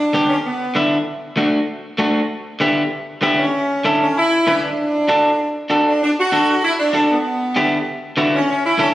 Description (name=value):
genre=latin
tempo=194 BPM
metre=4/4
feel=straight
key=D major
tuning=A4 = 445 Hz
part: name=warm saxophone section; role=melody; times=0.0-0.9, 3.4-8.9 s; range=B3 to F#4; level=-18 LUFS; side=equal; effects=none
part: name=electric guitar at the edge of break-up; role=accompaniment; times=0.1-8.9 s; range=D3 to B4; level=-17 LUFS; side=equal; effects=none
room=moderate plate reverb, RT60 3.1 s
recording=recorded on a phone in the room, studio reverb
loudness=-15 LUFS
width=side -15 dB against mid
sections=0.0-6.0 A section; 6.0-8.9 B section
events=none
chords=0.0 G/D; 1.1 D; 2.3 Em/D; 3.5 A/D; 4.8 D; 7.2 Em/D